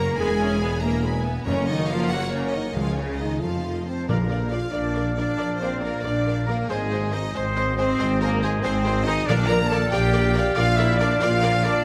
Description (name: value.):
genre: cinematic, heroic adventure film score.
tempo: 93 BPM (dotted quarters).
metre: 6/8.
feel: straight.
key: unclear.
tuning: A4 = 441 Hz.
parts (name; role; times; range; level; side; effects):
warm symphonic violin section; melody; 0.0-11.8 s; Ab4 to Bb5; -36 LUFS; equal; none.
warm symphonic violin section; second line; 0.0-11.7 s; Bb4 to Db6; -39 LUFS; equal; none.
warm symphonic viola section; accompaniment; 0.0-11.7 s; G#3 to D5; -35 LUFS; equal; none.
warm French horn section; sustained chords; 0.0-11.8 s; Ab3 to Bb4; -29 LUFS; equal; none.
concert harp; arpeggios; 0.0-11.8 s; E2 to E6; -39 LUFS; equal; none.
mellow tuba; bass; 0.0-11.7 s; E1 to Db2; -32 LUFS; equal; none.
warm symphonic cello section; bass; 0.0-11.8 s; Ab2 to Bb3; -32 LUFS; equal; none.
warm symphonic double bass section; bass; 0.0-11.8 s; E1 to F2; -31 LUFS; equal; none.
timpani; percussion; 1.5-4.7, 9.3-9.9 s; Gb2 to Db3; -32 LUFS; equal; none.
bright silver concert flute; second line; 3.9-11.8 s; Ab4 to Bb5; -32 LUFS; equal; none.
clear oboe; second line; 4.1-11.8 s; Eb5 to F5; -34 LUFS; equal; none.
warm clarinet; second line; 4.1-11.7 s; C5 to D5; -35 LUFS; equal; none.
room: moderate scoring stage reverb, RT60 1.6 s.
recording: none.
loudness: -23 LUFS.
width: mono.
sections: 0.0-4.1 A section; 4.1-11.8 B section.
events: none.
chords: 0.2 E; 1.5 Gb; 2.8 Db; 3.4 F7; 4.1 Bb; 6.7 Ab; 9.3 Bb.